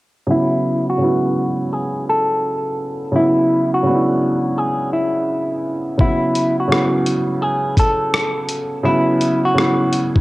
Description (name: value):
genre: lo-fi hip hop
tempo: 84 BPM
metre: 4/4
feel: swing 65% on 16ths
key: F# minor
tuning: A4 = 440 Hz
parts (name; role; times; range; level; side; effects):
- semi-hollow electric guitar; melody; 0.3-10.2 s; E4 to A4; -19 LUFS; equal; low-pass filter, cassette tape, analog delay
- warm upright piano; accompaniment; 0.3-10.2 s; C#3 to E4; -18 LUFS; right 1 dB; low-pass filter, cassette tape
- dusty soul sampler-style drum kit; drums; 6.0-10.2 s; hi-hat, kick drum, rim click; -18 LUFS; equal; cassette tape
room: moderate spring reverb, RT60 1.7 s, digital ambience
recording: home recording on cassette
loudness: -15 LUFS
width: side -19 dB against mid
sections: 0.3-10.2 A section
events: filter sweep 0.3-10.2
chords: 0.3 F#m7; 3.1 C#m7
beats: | 0.28 0.99 1.71 2.42 | 3.14 3.85 4.57 5.28 | 5.99 6.71 7.42 8.14 | 8.85 9.56